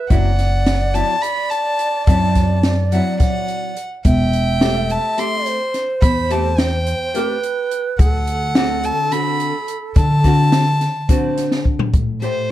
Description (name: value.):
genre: progressive instrumental, band music in an uneven meter.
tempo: 213 BPM (eighths).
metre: 7/8.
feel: straight.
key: unclear.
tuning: A4 = 438 Hz.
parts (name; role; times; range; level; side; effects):
breathy bright bass bansuri; second line; 0.0-11.6 s; A4 to E5; -24 LUFS; right 4 dB; plate reverb.
rich violin; melody; 0.1-12.5 s; C5 to C6; -22 LUFS; left 1 dB; plate reverb.
archtop guitar, miked and amplified; accompaniment; 0.1-12.5 s; D3 to C5; -23 LUFS; left 1 dB; double-tracked left and right.
upright bass; bass; 0.1-12.5 s; E1 to D3; -18 LUFS; equal; none.
open jazz drum kit; drums; 0.1-12.3 s; hi-hat, kick drum, snare drum, toms; -17 LUFS; equal; none.
room: light reverb.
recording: dark, warm production.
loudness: -15 LUFS.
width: side -13 dB against mid.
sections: 0.0-11.9 A section.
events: drum fill 11.5-11.9.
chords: 0.1 D7/F#; 4.0 Am7/E; 8.0 D7; 11.9 Am7.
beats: | 0.10 0.39 0.67 0.95 1.23 1.51 1.79 | 2.08 2.36 2.64 2.92 3.20 3.48 3.77 | 4.05 4.33 4.61 4.89 5.17 5.46 5.74 | 6.02 6.30 6.58 6.87 7.15 7.43 7.71 | 7.99 8.27 8.56 8.84 9.12 9.40 9.68 | 9.96 10.24 10.53 10.81 11.09 11.37 11.65 | 11.93 12.22 12.50.